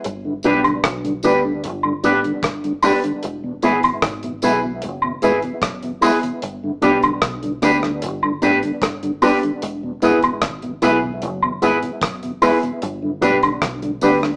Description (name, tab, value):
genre	roots reggae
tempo	75 BPM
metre	4/4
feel	straight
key	unclear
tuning	A4 = 441 Hz
part	damped 70s drum kit	drums	0.0-14.4 s	hi-hat, kick drum, rim click	-26 LUFS	equal	none
part	deep dub fingered electric bass	bass	0.1-14.4 s	E1 to D2	-32 LUFS	equal	none
part	mellow tonewheel organ	accompaniment	0.2-14.3 s	E2 to E4	-25 LUFS	equal	chorus vibrato, stopped rotary speaker, tape echo
part	electric guitar with an envelope filter	accompaniment	0.4-14.2 s	D4 to B4	-22 LUFS	equal	none
part	dark upright piano	stabs	0.4-14.2 s	B3 to B4	-22 LUFS	equal	none
part	tambourine and woodblock	percussion	0.4-14.2 s	none	-23 LUFS	equal	none
room	moderate studio reverb, RT60 0.7 s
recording	band playing live in one room, small speaker sound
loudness	-19 LUFS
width	mono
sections	0.0-14.4 A section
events	none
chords	0.0 G; 3.2 E; 6.4 G; 9.6 E; 12.8 G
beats	| 0.04 0.84 1.64 2.43 | 3.23 4.03 4.83 5.63 | 6.42 7.22 8.02 8.82 | 9.62 10.42 11.22 12.02 | 12.82 13.62